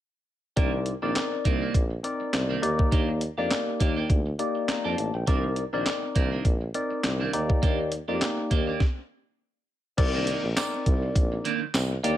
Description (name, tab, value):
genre	early-eighties boogie funk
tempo	102 BPM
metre	4/4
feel	swing 56% on 16ths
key	C minor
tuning	A4 = 438 Hz
part	barky tine electric piano	accompaniment	0.6-12.2 s	Bb3 to Bb5	-29 LUFS	left 2 dB	overdrive, phaser
part	clean electric guitar	riff	0.6-12.2 s	Eb3 to G4	-32 LUFS	right 6 dB	lush chorus
part	warm tuba	bass	0.6-12.2 s	A1 to F2	-29 LUFS	equal	none
part	clean 12-bit digital drum machine	drums	0.6-12.2 s	crash cymbal, handclaps, hi-hat, kick drum, snare drum	-25 LUFS	equal	gated reverb
part	tambourine	percussion	10.6-11.9 s	none	-36 LUFS	right 8 dB	none
room	little or no reverb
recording	none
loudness	-24 LUFS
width	side -12 dB against mid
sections	0.6-10.0 A section; 10.0-12.2 B section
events	stop 8.8-10.0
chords	0.6 Cm9; 2.6 Ebmaj7; 5.3 Cm9; 7.3 Ebmaj7; 10.0 Cm9